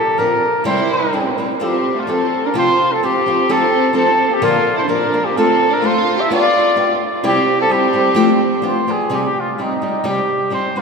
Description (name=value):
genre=mexican folk, mariachi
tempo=128 BPM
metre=2/4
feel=rubato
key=F major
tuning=A4 = 441 Hz
part: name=mellow trumpet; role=melody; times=0.0-10.8 s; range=Eb4 to E5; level=-16 LUFS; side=equal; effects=none
part: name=flamenco guitar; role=accompaniment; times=0.2-10.8 s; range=Bb2 to Bb4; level=-19 LUFS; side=left 1 dB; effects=none
part: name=warm symphonic violin section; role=second line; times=0.6-8.6 s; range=A3 to G4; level=-21 LUFS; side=right 1 dB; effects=none
room=wet cathedral reverb, RT60 4.6 s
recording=recorded in a church or concert hall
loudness=-13 LUFS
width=side -4 dB against mid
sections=0.0-9.1 A section; 9.1-10.8 B section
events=none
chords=0.0 Bbadd9; 0.6 C; 1.6 F; 2.5 Csus4; 3.5 F7; 4.4 Bb; 5.4 F/A; 6.3 G7/B; 7.2 C; 8.2 Fadd9; 8.6 G7; 9.1 Cm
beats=0.17 | 0.64 1.11 | 1.59 2.07 | 2.54 3.01 | 3.48 3.95 | 4.42 4.89 | 5.37 5.84 | 6.31 6.78 | 7.24 7.70 | 8.16 8.63 | 9.11 9.58 | 10.05 10.52